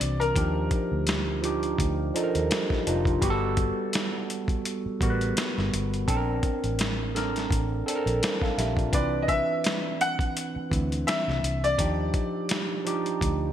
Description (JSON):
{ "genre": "R&B, neo-soul", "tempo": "84 BPM", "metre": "4/4", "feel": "swing 55% on 16ths", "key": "unclear", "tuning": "A4 = 440 Hz", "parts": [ { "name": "clear grand piano", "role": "melody", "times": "0.0-2.3, 8.9-13.5 s", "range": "Bb4 to F#5", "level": "-29 LUFS", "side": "left 1 dB", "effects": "analog chorus" }, { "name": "overdriven tine electric piano", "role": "accompaniment", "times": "0.0-13.5 s", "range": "E3 to A5", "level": "-28 LUFS", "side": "right 1 dB", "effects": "phaser" }, { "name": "vintage muted fingered electric bass", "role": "bass", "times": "0.0-13.5 s", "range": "F1 to Eb2", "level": "-29 LUFS", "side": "equal", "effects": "none" }, { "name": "boom bap sampler-style drum kit", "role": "drums", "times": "0.0-13.4 s", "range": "hi-hat, kick drum, snare drum", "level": "-28 LUFS", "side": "equal", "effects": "gated reverb" } ], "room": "moderate lush hall reverb, RT60 2.2 s", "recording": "bright 1980s-style digital production", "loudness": "-24 LUFS", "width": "side -10 dB against mid", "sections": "0.0-13.5 A section", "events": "none", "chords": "0.4 Ebmaj9; 3.2 Gmaj9; 6.1 Bbmaj9; 8.9 Cmaj9; 11.8 Ebmaj9" }